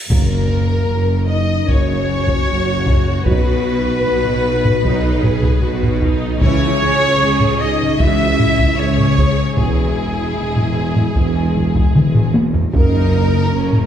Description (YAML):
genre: cinematic, epic orchestral film score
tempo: 76 BPM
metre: 4/4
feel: straight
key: F# mixolydian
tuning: A4 = 440 Hz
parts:
  - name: cymbal swell and impact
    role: sound effects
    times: 0.0-3.3 s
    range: none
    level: -27 LUFS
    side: equal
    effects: none
  - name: rich symphonic violin section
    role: melody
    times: 0.1-13.9 s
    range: G#4 to E5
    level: -25 LUFS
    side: left 3 dB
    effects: none
  - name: concert flute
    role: second line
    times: 0.1-13.9 s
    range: G#4 to E5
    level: -27 LUFS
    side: right 1 dB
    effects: none
  - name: dark symphonic violin section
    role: second line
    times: 0.1-13.9 s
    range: G#4 to E5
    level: -27 LUFS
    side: left 3 dB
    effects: none
  - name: dark trombone section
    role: sustained chords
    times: 0.1-13.0 s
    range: C#3 to E4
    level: -29 LUFS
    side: right 3 dB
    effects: none
  - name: mellow French horn section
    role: sustained chords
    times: 0.1-13.9 s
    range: G#3 to E4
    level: -25 LUFS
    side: left 3 dB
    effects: none
  - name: dark trumpet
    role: stabs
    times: 0.1-13.9 s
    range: G#4 to E5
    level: -25 LUFS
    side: right 1 dB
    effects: none
  - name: clear symphonic double bass section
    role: bass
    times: 0.1-13.9 s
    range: E1 to C#2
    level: -23 LUFS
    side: right 2 dB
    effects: none
  - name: mellow tuba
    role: bass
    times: 0.1-13.9 s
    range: E1 to C#2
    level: -22 LUFS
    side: right 1 dB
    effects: none
  - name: rich symphonic cello section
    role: bass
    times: 0.1-13.9 s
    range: E2 to C#3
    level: -23 LUFS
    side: right 1 dB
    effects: none
  - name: taiko ensemble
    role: drums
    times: 0.1-13.9 s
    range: none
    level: -17 LUFS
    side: equal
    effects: none
  - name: timpani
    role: percussion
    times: 0.1-1.3, 6.4-7.6, 12.7-13.9 s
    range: F#2 to C#3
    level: -24 LUFS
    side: equal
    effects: none
  - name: warm symphonic viola section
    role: accompaniment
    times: 1.7-13.9 s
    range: C#4 to G#4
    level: -27 LUFS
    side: right 2 dB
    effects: none
room: wet scoring stage reverb, RT60 1.8 s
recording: heard from further back in the room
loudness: -13 LUFS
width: side -9 dB against mid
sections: 0.1-13.9 A section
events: impact 0.1-3.3; drum fill 12.0-12.7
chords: 0.1 F#; 3.3 B; 6.4 C#m; 9.6 E; 12.7 F#